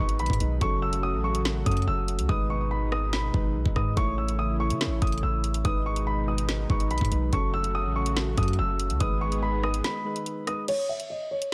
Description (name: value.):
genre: hip hop, drill.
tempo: 143 BPM.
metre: 4/4.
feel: half-time.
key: G# phrygian.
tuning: A4 = 440 Hz.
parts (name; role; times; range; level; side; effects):
dark grand piano; melody; 0.0-11.5 s; C#5 to E6; -33 LUFS; equal; low-pass filter, digital delay.
soft electric-piano-like synth keys; accompaniment; 0.0-10.7 s; F#3 to C#5; -36 LUFS; equal; chorus, low-pass filter.
warm analog pad; sustained chords; 0.0-10.7 s; B2 to G#4; -38 LUFS; equal; chorus.
long sustained 808-style bass; bass; 0.0-9.8 s; F#1 to C#3; -30 LUFS; equal; none.
drill drum kit; drums; 0.1-11.5 s; crash cymbal, hi-hat, kick drum, rim click, snare drum; -31 LUFS; equal; overdrive.
room: digital ambience.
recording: none.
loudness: -27 LUFS.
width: mono.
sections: 0.0-10.7 A section.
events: hi-hats muted 2.3-4.0; break 9.8-10.7; kick muted 10.7-11.5.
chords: 0.0 G#m; 0.6 F#m; 2.3 G#m; 4.0 A; 5.6 G#m; 7.3 F#m; 9.0 G#m; 10.7 N.C..